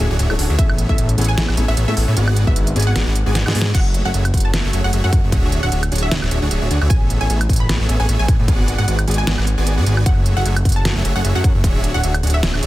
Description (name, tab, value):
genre	future bass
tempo	152 BPM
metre	4/4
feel	swing 55% on 16ths, half-time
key	F# minor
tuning	A4 = 440 Hz
part	wide unison pluck	melody	0.0-12.7 s	E5 to B5	-27 LUFS	equal	sidechain pumping, digital delay
part	felt-muted upright piano	accompaniment	0.0-3.7 s	G#3 to B4	-27 LUFS	left 4 dB	sidechain pumping, dub echo
part	supersaw chords	riff	0.0-12.7 s	A3 to G#5	-24 LUFS	right 1 dB	sidechain pumping
part	fat analog bass	bass	0.0-12.7 s	D1 to A2	-17 LUFS	equal	sidechain pumping
part	dubstep drum kit	drums	0.2-12.7 s	crash cymbal, hi-hat, snare drum, woodblock	-23 LUFS	right 1 dB	studio reverb
part	electronic kick drum	drums	0.6-11.7 s	none	-16 LUFS	equal	studio reverb
room	digital ambience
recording	dense, heavily limited modern master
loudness	-14 LUFS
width	side -16 dB against mid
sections	0.0-3.7 A section; 3.7-12.7 A section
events	drop 0.0-3.7, 3.7-12.7; drum fill 3.4-3.7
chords	0.0 Dmaj9#11; 0.6 Amaj9; 2.2 G#m7b5; 3.7 F#m9; 5.3 Dmaj9#11; 6.9 Amaj9; 8.5 G#m7b5; 10.1 F#m9; 11.6 Dmaj9#11